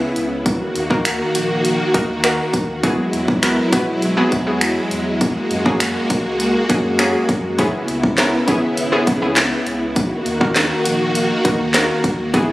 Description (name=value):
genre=dance-pop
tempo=101 BPM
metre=4/4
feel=straight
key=unclear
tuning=A4 = 439 Hz
part: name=analog pluck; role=accompaniment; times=0.0-12.5 s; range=A#3 to B4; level=-20 LUFS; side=equal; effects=chorus, sidechain pumping
part: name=string machine, violas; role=sustained chords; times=0.0-12.5 s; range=C#3 to F#4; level=-19 LUFS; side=equal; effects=ensemble chorus, sidechain pumping
part: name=warm sub bass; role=bass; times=0.0-12.5 s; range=G#1 to F#2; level=-29 LUFS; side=equal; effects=sidechain pumping
part: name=house drum kit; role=drums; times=0.2-12.5 s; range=finger snaps, handclaps, hi-hat, kick drum, snare drum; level=-19 LUFS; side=equal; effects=none
room=moderate lush hall reverb, RT60 2.0 s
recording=recorded on a phone in the room, studio reverb, compression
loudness=-15 LUFS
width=side -18 dB against mid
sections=0.0-12.5 A section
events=none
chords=0.5 D#m; 2.8 Eadd9; 5.2 F#add9; 7.6 C#m7; 10.0 D#m